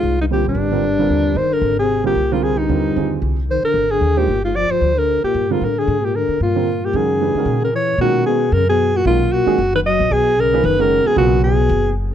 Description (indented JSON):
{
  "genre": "modal jazz",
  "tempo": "226 BPM",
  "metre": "4/4",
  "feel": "swing 58% on 8ths",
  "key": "Ab lydian, B lydian from 8.0 s",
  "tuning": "A4 = 440 Hz",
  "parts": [
    { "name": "warm alto saxophone", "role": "melody", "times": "0.0-11.9 s", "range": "D4 to D#5", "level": "-18 LUFS", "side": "right 1 dB", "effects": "none" },
    { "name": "breathy trombone", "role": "second line", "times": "0.0-11.9 s", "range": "G2 to F#3", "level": "-22 LUFS", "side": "left 12 dB", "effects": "none" },
    { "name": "upright bass", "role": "bass", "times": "0.0-12.1 s", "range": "F#1 to B2", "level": "-21 LUFS", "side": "equal", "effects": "none" },
    { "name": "dark grand piano", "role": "accompaniment", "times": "0.3-11.6 s", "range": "C#3 to C5", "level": "-22 LUFS", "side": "right 12 dB", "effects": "none" }
  ],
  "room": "studio reverb",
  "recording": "dry, close 1970s-style studio recording",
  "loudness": "-14 LUFS",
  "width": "side -10 dB against mid",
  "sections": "0.0-8.0 A section; 8.0-12.1 B section",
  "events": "none",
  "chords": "0.0 Abmaj9#11; 3.8 Gm7; 6.9 Gb9; 8.0 Bmaj9",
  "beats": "0.04 0.30 | 0.57 0.83 1.10 1.37 | 1.63 1.90 2.16 2.43 | 2.69 2.96 3.23 3.49 | 3.76 4.02 4.29 4.55 | 4.82 5.08 5.35 5.61 | 5.88 6.14 6.41 6.67 | 6.94 7.20 7.47 7.73 | 8.00 8.26 8.53 8.79 | 9.06 9.32 9.59 9.85 | 10.11 10.38 10.64 10.91 | 11.17 11.44 11.70 11.96"
}